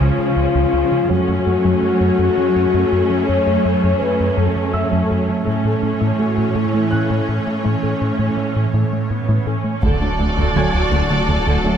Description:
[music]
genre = cinematic, hybrid orchestral and electronic film score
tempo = 55 BPM (dotted quarters)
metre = 6/8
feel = straight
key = F# minor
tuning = A4 = 438 Hz
[part]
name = warm symphonic viola section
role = accompaniment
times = 0.0-11.8 s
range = D3 to F#4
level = -23 LUFS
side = right 4 dB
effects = none
[part]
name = airy breathy pad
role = sustained chords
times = 0.0-11.8 s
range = E3 to D5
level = -26 LUFS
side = left 1 dB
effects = chorus
[part]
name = mellow French horn section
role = sustained chords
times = 0.0-9.4 s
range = C#4 to C#5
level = -21 LUFS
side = left 5 dB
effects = none
[part]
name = tight sequenced synth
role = arpeggios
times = 0.0-11.8 s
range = C#3 to A4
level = -27 LUFS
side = right 1 dB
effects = none
[part]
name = rubbery square bass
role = riff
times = 0.0-11.8 s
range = C#2 to A3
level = -21 LUFS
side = left 1 dB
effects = none
[part]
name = rich symphonic cello section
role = bass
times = 0.0-11.7 s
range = D2 to C#3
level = -23 LUFS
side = right 3 dB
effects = none
[part]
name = bright baby grand piano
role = texture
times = 0.0-1.1, 4.7-11.8 s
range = E5 to G#6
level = -32 LUFS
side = equal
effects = none
[part]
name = rich symphonic violin section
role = melody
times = 9.8-11.8 s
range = D5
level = -24 LUFS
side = left 1 dB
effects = none
[part]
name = warm symphonic violin section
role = second line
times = 9.8-11.8 s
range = A4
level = -26 LUFS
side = equal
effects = none
[part]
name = rich symphonic double bass section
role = bass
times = 9.8-11.7 s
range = D2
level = -26 LUFS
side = right 3 dB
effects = none
[part]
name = snarling distorted saw bass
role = bass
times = 9.8-11.8 s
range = D1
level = -25 LUFS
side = right 1 dB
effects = none
[part]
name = taiko ensemble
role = drums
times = 9.8-11.6 s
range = none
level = -25 LUFS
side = right 1 dB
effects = none
[part]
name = clear trombone section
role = sustained chords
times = 10.6-11.8 s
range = F#3 to A3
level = -26 LUFS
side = right 4 dB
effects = none
[sound]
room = moderate scoring stage reverb, RT60 1.8 s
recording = none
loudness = -15 LUFS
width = side -8 dB against mid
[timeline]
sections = 0.0-9.8 A section; 9.8-11.8 B section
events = none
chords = 0.0 C#; 1.1 F#m; 5.5 A; 9.8 D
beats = 0.01 | 1.10 2.19 | 3.28 4.37 | 5.46 6.55 | 7.65 8.74 | 9.83 10.92

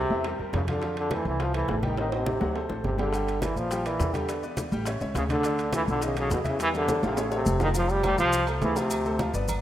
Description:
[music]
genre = latin, salsa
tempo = 208 BPM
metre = 4/4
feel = straight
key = D minor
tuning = A4 = 440 Hz
[part]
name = bright trombone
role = melody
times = 0.0-9.3 s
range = B2 to G3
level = -27 LUFS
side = equal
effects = none
[part]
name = bright grand piano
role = accompaniment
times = 0.0-9.6 s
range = D3 to G5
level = -33 LUFS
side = left 2 dB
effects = none
[part]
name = upright bass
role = bass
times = 0.0-9.6 s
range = E#1 to F2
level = -30 LUFS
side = equal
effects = none
[part]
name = bongos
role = percussion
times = 0.1-7.7 s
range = none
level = -39 LUFS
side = left 5 dB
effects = none
[part]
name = congas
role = percussion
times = 0.1-9.6 s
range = none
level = -35 LUFS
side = equal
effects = none
[part]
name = timbales and agogo bells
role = percussion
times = 0.2-9.6 s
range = none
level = -37 LUFS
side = right 6 dB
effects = none
[part]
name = maracas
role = percussion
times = 3.1-9.6 s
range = none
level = -42 LUFS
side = left 3 dB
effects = none
[sound]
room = moderate lush hall reverb, RT60 2.4 s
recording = rough home demo mix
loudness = -24 LUFS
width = side -12 dB against mid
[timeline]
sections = 0.0-7.8 A section; 7.8-9.6 B section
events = drum fill 2.0-3.1, 6.9-7.8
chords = 0.0 C7; 0.8 Fadd9; 2.0 Adim; 2.6 D5; 3.1 Gm7; 4.3 Em7; 4.9 A; 5.4 Dm; 6.0 B7; 6.6 Em7b5; 7.2 Aaug; 7.8 F; 8.9 Dm7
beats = 0.24 0.53 | 0.82 1.11 1.40 1.69 | 1.98 2.27 2.55 2.84 | 3.13 3.42 3.71 4.00 | 4.29 4.58 4.87 5.15 | 5.44 5.73 6.02 6.31 | 6.60 6.89 7.17 7.46 | 7.75 8.04 8.33 8.62 | 8.91 9.19 9.48

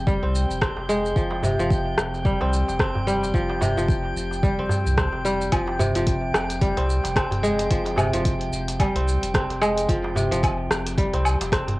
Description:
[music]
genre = organic downtempo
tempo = 110 BPM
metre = 4/4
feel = swing 58% on 16ths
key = F minor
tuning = A4 = 440 Hz
[part]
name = kora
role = arpeggios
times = 0.0-11.8 s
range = C3 to C4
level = -24 LUFS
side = equal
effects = cassette tape, tape echo
[part]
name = warm sub bass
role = bass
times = 0.0-11.8 s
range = F1 to C2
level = -28 LUFS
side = equal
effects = sidechain pumping
[part]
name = drifting glass-harmonics texture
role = texture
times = 0.0-11.8 s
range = G5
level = -32 LUFS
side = right 1 dB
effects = chorus, built-in reverb, cassette tape
[part]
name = deep house drum kit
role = drums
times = 0.1-11.8 s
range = hi-hat, rim click, shaker, woodblock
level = -27 LUFS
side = equal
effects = cassette tape
[part]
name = electronic kick drum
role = drums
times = 0.1-11.6 s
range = none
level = -24 LUFS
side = equal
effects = cassette tape
[part]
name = darbuka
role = percussion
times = 0.8-11.8 s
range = none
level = -28 LUFS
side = right 1 dB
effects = none
[sound]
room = light reverb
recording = home recording on cassette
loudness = -20 LUFS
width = side -20 dB against mid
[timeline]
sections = 0.0-11.8 A section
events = none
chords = 0.0 Fmadd9; 1.2 Fsus2; 5.5 Fmadd9; 9.9 Fsus2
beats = 0.07 0.61 | 1.16 1.70 2.25 2.79 | 3.34 3.89 4.43 4.98 | 5.52 6.07 6.61 7.16 | 7.70 8.25 8.79 9.34 | 9.89 10.43 10.98 11.52

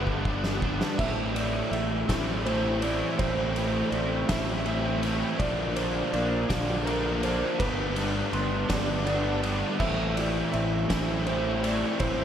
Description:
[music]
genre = post-rock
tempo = 54 BPM (dotted quarters)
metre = 6/8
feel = straight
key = A minor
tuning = A4 = 442 Hz
[part]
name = crunchy overdriven guitar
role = riff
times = 0.0-12.2 s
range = G2 to E4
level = -28 LUFS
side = equal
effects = analog chorus
[part]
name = fuzz fingered electric bass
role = bass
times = 0.0-12.2 s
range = G1 to Bb1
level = -31 LUFS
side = equal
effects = overdrive
[part]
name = oversized low-tuned drum kit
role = drums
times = 0.1-12.2 s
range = crash cymbal, kick drum, ride cymbal, snare drum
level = -32 LUFS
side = equal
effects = none
[part]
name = felt-muted upright piano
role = arpeggios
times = 1.0-12.2 s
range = Bb4 to C6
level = -33 LUFS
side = right 2 dB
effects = tape echo
[sound]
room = wet lush hall reverb, RT60 2.3 s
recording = dreamy mix soaked in reverb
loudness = -25 LUFS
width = side -9 dB against mid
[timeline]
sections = 0.0-12.2 A section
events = drum fill 0.0-1.0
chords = 0.0 G; 1.0 Am; 5.4 Bb; 7.6 G; 9.8 Am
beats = | 0.99 2.09 | 3.19 4.29 | 5.39 6.49 | 7.59 8.70 | 9.80 10.90 | 12.00

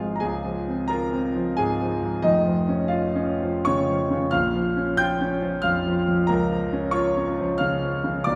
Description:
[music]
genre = classical, romantic nocturne for solo piano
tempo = 74-94 BPM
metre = 3/4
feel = rubato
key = unclear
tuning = A4 = 440 Hz
[part]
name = clear concert grand piano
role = solo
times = 0.0-8.4 s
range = F1 to G6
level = -24 LUFS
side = equal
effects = none
[sound]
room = wet recital hall reverb, RT60 1.7 s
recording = heard from further back in the room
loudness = -24 LUFS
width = mono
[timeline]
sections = 0.0-8.4 A section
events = none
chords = 0.2 Dbmaj7; 2.2 Db/F; 4.3 Bbm; 6.3 Bbm/Db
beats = | 0.21 0.90 1.58 | 2.25 2.92 3.67 | 4.33 4.99 5.64 | 6.29 6.94 7.59 | 8.26

